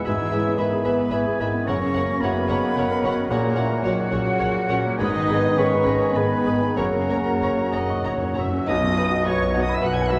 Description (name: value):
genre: classical, romantic movement for piano and orchestra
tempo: 92-117 BPM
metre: 3/4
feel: rubato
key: unclear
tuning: A4 = 440 Hz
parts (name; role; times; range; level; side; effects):
- muted chamber violin section; melody; 0.0-10.2 s; F#4 to G#6; -38 LUFS; equal; none
- warm concert grand piano; melody; 0.0-10.2 s; B1 to C#6; -27 LUFS; equal; none
- bright silver concert flute; second line; 0.0-10.2 s; C#5 to E6; -33 LUFS; equal; none
- clear oboe; second line; 0.0-10.2 s; C#5 to B5; -35 LUFS; equal; none
- mellow clarinet; second line; 0.0-10.2 s; G#4 to G#5; -34 LUFS; equal; none
- mellow bassoon; accompaniment; 0.0-8.4 s; B2 to E3; -33 LUFS; equal; none
- bright trombone section; sustained chords; 0.0-10.2 s; C#3 to C#4; -36 LUFS; equal; none
- mellow French horn section; sustained chords; 0.0-10.2 s; B3 to C#5; -34 LUFS; equal; none
- muted chamber cello section; bass; 0.0-10.2 s; B2 to E4; -30 LUFS; equal; none
- muted chamber violin section; second line; 0.1-10.2 s; D#4 to B5; -37 LUFS; equal; none
- muted chamber viola section; accompaniment; 0.1-10.2 s; F#3 to E5; -35 LUFS; equal; none
- muted chamber double bass section; bass; 0.1-10.2 s; F#1 to B1; -34 LUFS; equal; none
- cymbal swell and tam-tam; percussion; 5.0-10.2 s; none; -39 LUFS; equal; none
- timpani; percussion; 6.8-8.6 s; F#2; -35 LUFS; equal; none
- dark trumpet section; stabs; 8.7-10.2 s; C#5 to G#5; -32 LUFS; equal; none
room: wet concert hall reverb, RT60 2.1 s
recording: none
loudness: -22 LUFS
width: mono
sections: 0.0-8.7 A section; 8.7-10.2 A section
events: timpani fill 6.8-8.7; band accent 8.7-9.3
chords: 0.1 E/G#; 1.7 F#; 3.3 F#/A#; 5.0 G#m; 6.8 F#; 8.7 B